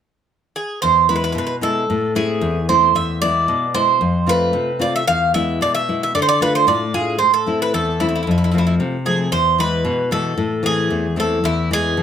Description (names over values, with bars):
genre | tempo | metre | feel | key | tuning
greek folk | 113 BPM | 2/4 | straight | E phrygian dominant | A4 = 439 Hz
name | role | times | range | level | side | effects
Greek bouzouki | melody | 0.6-12.0 s | E4 to F5 | -18 LUFS | right 3 dB | none
nylon-string guitar | accompaniment | 0.8-12.0 s | E2 to F4 | -19 LUFS | left 2 dB | none
room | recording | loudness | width
moderate studio reverb, RT60 0.6 s | none | -15 LUFS | side -8 dB against mid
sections
0.8-9.3 A section; 9.3-12.0 A section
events
none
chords
0.0 N.C.; 0.8 E; 1.9 Am; 3.0 E; 4.0 F; 5.1 E; 6.1 Dm; 7.2 Am; 8.3 F; 9.3 E; 10.4 Am; 11.4 E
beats
0.30 | 0.83 1.36 | 1.90 2.43 | 2.96 3.49 | 4.02 4.55 | 5.09 5.62 | 6.15 6.68 | 7.21 7.74 | 8.27 8.80 | 9.32 9.85 | 10.38 10.91 | 11.44 11.96